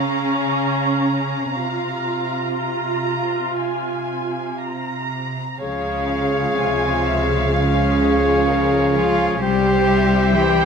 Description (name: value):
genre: cinematic, emotional film score for orchestra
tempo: 59-65 BPM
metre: 4/4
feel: rubato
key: unclear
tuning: A4 = 440 Hz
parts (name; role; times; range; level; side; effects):
- muted studio violin section; second line; 0.0-10.7 s; Ab4 to Bb5; -27 LUFS; equal; none
- muted symphonic viola section; accompaniment; 0.0-10.7 s; Ab3 to G4; -24 LUFS; right 2 dB; none
- muted symphonic cello section; bass; 0.0-10.7 s; C3 to G3; -24 LUFS; left 1 dB; none
- muted cello; melody; 5.6-10.7 s; C4 to G4; -23 LUFS; right 2 dB; none
- muted symphonic violin section; melody; 5.6-10.7 s; C5 to F5; -28 LUFS; left 4 dB; none
- concert flute; second line; 5.6-10.7 s; F5 to G5; -27 LUFS; equal; none
- warm clarinet; second line; 5.6-10.7 s; G4 to Ab4; -27 LUFS; equal; none
- warm oboe; second line; 5.6-10.7 s; C5 to Db5; -25 LUFS; equal; none
- mellow French horn section; sustained chords; 5.6-10.7 s; F3 to Ab4; -24 LUFS; left 4 dB; none
- muted symphonic double bass section; bass; 5.6-10.7 s; C2 to Db2; -25 LUFS; right 2 dB; none
room: moderate scoring stage reverb, RT60 2.0 s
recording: none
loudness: -17 LUFS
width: side -6 dB against mid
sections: 0.0-5.6 A section; 5.6-10.7 A section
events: none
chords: 0.0 Bbm/Db; 1.5 Fm/C; 5.6 Db; 9.4 C